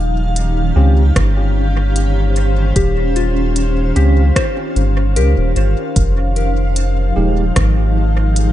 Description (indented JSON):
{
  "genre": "ambient dub",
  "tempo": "75 BPM",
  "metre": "4/4",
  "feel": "swing 53% on 16ths",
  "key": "unclear",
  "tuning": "A4 = 444 Hz",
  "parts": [
    { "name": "granular cloud pad", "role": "sustained chords", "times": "0.0-8.5 s", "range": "Eb3 to F5", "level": "-21 LUFS", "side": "equal", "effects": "built-in reverb" },
    { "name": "soft synth bell", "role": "arpeggios", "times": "0.0-8.5 s", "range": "F4 to F5", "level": "-25 LUFS", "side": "left 4 dB", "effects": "chorus, phaser, low-pass filter, analog delay" },
    { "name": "soft dub sub bass", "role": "bass", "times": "0.0-8.5 s", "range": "Eb1 to Db2", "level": "-14 LUFS", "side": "equal", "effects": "none" },
    { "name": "organic electronic drum kit", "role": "drums", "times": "0.4-8.5 s", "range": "hi-hat, rim click", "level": "-24 LUFS", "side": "right 1 dB", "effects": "overdrive, dub echo" },
    { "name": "tine electric piano", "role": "stabs", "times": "0.8-7.4 s", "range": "Ab3 to G4", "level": "-26 LUFS", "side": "equal", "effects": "wide subtle chorus, dub echo" },
    { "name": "electronic kick drum", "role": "drums", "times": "1.2-7.7 s", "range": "none", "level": "-17 LUFS", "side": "equal", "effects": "none" },
    { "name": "bubbling stepped-filter texture", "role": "texture", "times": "6.2-8.5 s", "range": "F5", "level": "-31 LUFS", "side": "left 1 dB", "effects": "chorus, built-in reverb" }
  ],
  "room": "little or no reverb",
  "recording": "echo-heavy mix, nothing above 10.9 kHz",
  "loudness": "-12 LUFS",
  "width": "side -13 dB against mid",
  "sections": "0.0-8.5 A section",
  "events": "none",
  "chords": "0.0 Eb13; 6.0 Fm7"
}